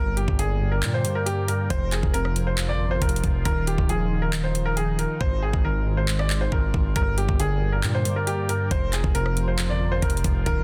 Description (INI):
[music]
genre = hip hop, trap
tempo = 137 BPM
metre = 4/4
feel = half-time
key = unclear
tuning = A4 = 440 Hz
[part]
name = clear grand piano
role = melody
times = 0.0-10.6 s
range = G4 to D5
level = -31 LUFS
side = equal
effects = none
[part]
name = warbly lo-fi synth keys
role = accompaniment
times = 0.0-10.6 s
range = F2 to F3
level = -30 LUFS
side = equal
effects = chorus
[part]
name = sweeping resonant pad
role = sustained chords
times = 0.0-10.6 s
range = Eb3 to G5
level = -38 LUFS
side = equal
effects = chorus
[part]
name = distorted 808-style bass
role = bass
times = 0.0-10.6 s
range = Eb1 to Bb2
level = -28 LUFS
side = equal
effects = distortion
[part]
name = trap drum kit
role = drums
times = 0.2-10.6 s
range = handclaps, hi-hat, kick drum, rim click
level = -28 LUFS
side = equal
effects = none
[sound]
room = digital ambience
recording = dense, heavily limited modern master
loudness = -24 LUFS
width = mono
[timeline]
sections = 0.0-10.6 A section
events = hi-hats muted 5.2-7.0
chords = 0.0 Gm; 1.7 Fsus4; 3.5 Ebsus2; 5.2 Ab6; 7.0 Gm; 8.7 Fsus4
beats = 0.39 0.83 1.26 | 1.70 2.14 2.58 3.02 | 3.46 3.89 4.33 4.77 | 5.21 5.64 6.08 6.52 | 6.96 7.40 7.83 8.27 | 8.71 9.15 9.59 10.02 | 10.46